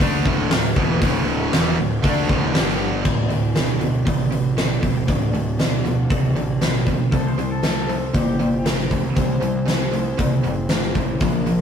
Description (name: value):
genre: classic rock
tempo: 118 BPM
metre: 4/4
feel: straight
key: D mixolydian from 3.0 s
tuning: A4 = 440 Hz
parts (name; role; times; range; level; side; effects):
- distorted electric guitar; riff; 0.0-11.6 s; D2 to D4; -24 LUFS; right 4 dB; overdrive
- overdriven semi-hollow guitar; riff; 0.0-11.6 s; D2 to D4; -25 LUFS; left 3 dB; none
- fuzz picked electric bass; bass; 0.0-11.6 s; D1 to D2; -27 LUFS; equal; overdrive
- huge arena drum kit; drums; 0.0-11.6 s; crash cymbal, hi-hat, kick drum, snare drum; -21 LUFS; equal; none
- picked plugged-in twelve-string acoustic guitar; accompaniment; 3.0-11.6 s; Bb2 to D5; -30 LUFS; left 2 dB; none
- raw garage guitar; second line; 7.1-8.6 s; G4 to C5; -31 LUFS; left 4 dB; overdrive, phaser
room: moderate booth ambience, RT60 0.2 s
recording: rough rehearsal-room recording, warm saturation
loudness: -18 LUFS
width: side -8 dB against mid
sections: 0.0-3.0 A section; 3.0-11.6 B section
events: none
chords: 0.0 D5; 2.5 G5; 3.0 Dadd9; 7.1 C